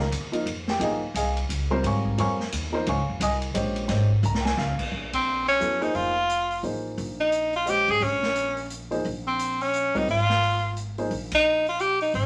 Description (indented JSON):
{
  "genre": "modal jazz",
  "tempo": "175 BPM",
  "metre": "3/4",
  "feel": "swing 62% on 8ths",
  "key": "Bb dorian",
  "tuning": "A4 = 440 Hz",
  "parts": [
    { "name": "warm baby grand piano", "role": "accompaniment", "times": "0.0-11.1 s", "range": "C3 to Eb6", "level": "-30 LUFS", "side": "equal", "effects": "none" },
    { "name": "upright bass", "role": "bass", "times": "0.0-12.3 s", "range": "F1 to Ab2", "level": "-31 LUFS", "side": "equal", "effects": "none" },
    { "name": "swinging big-band drum kit", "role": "drums", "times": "0.1-12.2 s", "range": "crash cymbal, hi-hat, kick drum, ride cymbal, snare drum", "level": "-37 LUFS", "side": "equal", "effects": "none" },
    { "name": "breathy tenor saxophone", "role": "melody", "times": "5.1-12.3 s", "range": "C4 to Ab4", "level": "-25 LUFS", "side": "equal", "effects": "none" }
  ],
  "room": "wet studio reverb, RT60 0.5 s",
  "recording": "none",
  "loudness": "-25 LUFS",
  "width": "mono",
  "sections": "0.0-4.9 A section; 4.9-12.3 B section",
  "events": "drum fill 4.2-4.6; band accent 5.1, 11.3",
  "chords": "0.0 Bbm; 0.8 Dbadd9/Bb; 4.9 Bbm7; 9.0 Db (rootless)",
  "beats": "0.12 0.46 | 0.80 1.15 1.49 | 1.83 2.17 2.52 | 2.86 3.20 3.55 | 3.89 4.23 4.58 | 4.92 5.26 5.61 | 5.95 6.29 6.64 | 6.98 7.33 7.67 | 8.01 8.36 8.70 | 9.04 9.39 9.73 | 10.07 10.42 10.76 | 11.11 11.45 11.79 | 12.14"
}